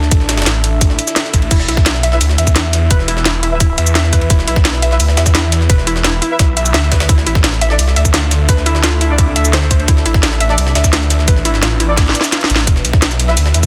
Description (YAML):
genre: dark technical drum and bass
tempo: 172 BPM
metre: 4/4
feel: straight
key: unclear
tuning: A4 = 440 Hz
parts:
  - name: deep dark ambient pad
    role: sustained chords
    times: 0.0-13.7 s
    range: D4 to E5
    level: -27 LUFS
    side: equal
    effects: chorus, built-in reverb, sidechain pumping
  - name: snarling distorted saw bass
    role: bass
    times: 0.0-13.7 s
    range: E1 to E2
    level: -17 LUFS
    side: equal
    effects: distortion, overdrive, sidechain pumping
  - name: jungle sampler-style drum kit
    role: drums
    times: 0.0-13.7 s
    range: hi-hat, ride cymbal, snare drum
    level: -26 LUFS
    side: equal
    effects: none
  - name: drum and bass drum kit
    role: drums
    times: 0.1-13.7 s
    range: cabasa, crash cymbal, hi-hat, snare drum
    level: -18 LUFS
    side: equal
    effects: none
  - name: electronic kick drum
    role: drums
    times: 0.1-13.7 s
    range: none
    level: -14 LUFS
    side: equal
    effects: none
  - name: swell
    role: sound effects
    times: 0.9-1.5 s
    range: none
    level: -31 LUFS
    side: equal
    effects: none
  - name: warbly dusty pluck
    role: arpeggios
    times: 1.5-12.4 s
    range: E4 to E5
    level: -23 LUFS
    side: equal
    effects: chorus, sidechain pumping, delay
  - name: warm brass ensemble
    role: stabs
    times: 2.1-13.3 s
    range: D4 to E5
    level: -25 LUFS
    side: equal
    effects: delay
room: light reverb, digital ambience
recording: dense, heavily limited modern master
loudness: -13 LUFS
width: mono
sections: 0.0-12.7 A section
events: drop 0.0-12.7; swell 0.9-1.5; drum fill 12.0-12.7; kick drops out 12.3-12.7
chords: 0.0 D5; 1.5 E5; 7.1 D5; 12.7 E5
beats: | 0.12 0.46 0.81 1.16 | 1.51 1.86 2.21 2.56 | 2.90 3.25 3.60 3.95 | 4.30 4.65 5.00 5.35 | 5.70 6.04 6.39 6.74 | 7.09 7.44 7.79 8.14 | 8.49 8.84 9.18 9.53 | 9.88 10.23 10.58 10.93 | 11.28 11.63 11.97 12.32 | 12.67 13.02 13.37